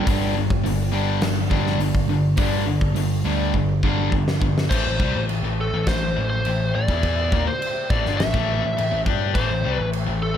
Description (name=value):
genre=hard rock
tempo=103 BPM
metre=4/4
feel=straight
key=A minor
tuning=A4 = 440 Hz
part: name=sludgy distorted guitar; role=riff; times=0.0-4.7 s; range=G2 to G3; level=-25 LUFS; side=right 11 dB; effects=overdrive
part: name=tight distorted guitar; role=riff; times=0.0-10.4 s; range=G2 to G4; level=-26 LUFS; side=left 10 dB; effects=distortion
part: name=overdriven picked electric bass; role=bass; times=0.1-10.4 s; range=G1 to G2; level=-24 LUFS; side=equal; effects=none
part: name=big rock drum kit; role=drums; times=0.1-10.1 s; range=crash cymbal, hi-hat, kick drum, snare drum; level=-25 LUFS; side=equal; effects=none
part: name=biting lead guitar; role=melody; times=4.7-10.4 s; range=A4 to E5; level=-26 LUFS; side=right 1 dB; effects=overdrive, analog delay
room=small room ambience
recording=none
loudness=-19 LUFS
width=side -9 dB against mid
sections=0.1-4.7 A section; 4.7-10.4 B section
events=drum fill 3.5-4.7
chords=0.1 G5; 4.7 Am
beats=| 0.07 0.65 1.22 1.80 | 2.38 2.96 3.54 4.12 | 4.70 5.28 5.86 6.44 | 7.03 7.61 8.19 8.77 | 9.35 9.94